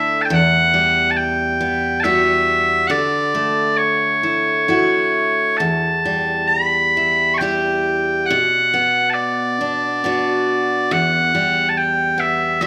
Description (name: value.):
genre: celtic folk, Celtic slow air.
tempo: 69 BPM.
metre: 3/4.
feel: rubato.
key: E dorian.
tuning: A4 = 440 Hz.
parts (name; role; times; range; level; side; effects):
loud bright bagpipes; melody; 0.0-12.7 s; C#5 to C#6; -18 LUFS; equal; none.
picked steel-string acoustic guitar; accompaniment; 0.0-12.7 s; E2 to G4; -23 LUFS; equal; none.
room: moderate recital hall reverb, RT60 1.6 s.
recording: none.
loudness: -17 LUFS.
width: mono.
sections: 0.0-12.7 A section.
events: none.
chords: 0.3 Emadd9; 2.9 Dadd9; 5.6 Em; 8.3 Bm; 10.9 Emadd9.